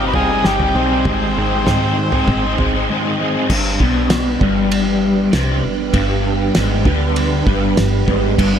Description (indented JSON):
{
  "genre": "psychedelic rock",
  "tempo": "98 BPM",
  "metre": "4/4",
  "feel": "straight",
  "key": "unclear",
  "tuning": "A4 = 440 Hz",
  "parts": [
    { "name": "combo organ", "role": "melody", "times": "0.0-2.5 s", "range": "C4 to B4", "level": "-22 LUFS", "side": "equal", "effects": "spring reverb, analog delay" },
    { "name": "string machine, violins", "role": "sustained chords", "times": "0.0-8.6 s", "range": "G3 to C6", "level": "-23 LUFS", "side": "right 6 dB", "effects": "ensemble chorus" },
    { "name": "crunchy overdriven guitar", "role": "riff", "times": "0.0-8.6 s", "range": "G2 to Ab4", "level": "-18 LUFS", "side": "left 2 dB", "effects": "rotary speaker" },
    { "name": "woody FM bass", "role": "bass", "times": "0.0-8.6 s", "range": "G1 to Ab2", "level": "-21 LUFS", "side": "equal", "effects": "none" },
    { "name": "cloth-damped thuddy drum kit", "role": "drums", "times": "0.1-8.5 s", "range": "crash cymbal, kick drum, ride cymbal, snare drum, toms", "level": "-20 LUFS", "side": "equal", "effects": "none" }
  ],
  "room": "moderate huge ambient reverb, RT60 7.6 s",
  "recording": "dreamy mix soaked in reverb",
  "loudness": "-14 LUFS",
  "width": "side -8 dB against mid",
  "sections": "0.0-3.5 A section; 3.5-8.6 B section",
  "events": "none",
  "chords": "0.0 Cmadd9/G; 1.1 Ab; 3.5 G",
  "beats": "0.44 | 1.05 1.67 2.28 2.89 | 3.50 4.11 4.72 5.33 | 5.94 6.55 7.16 7.77 | 8.38"
}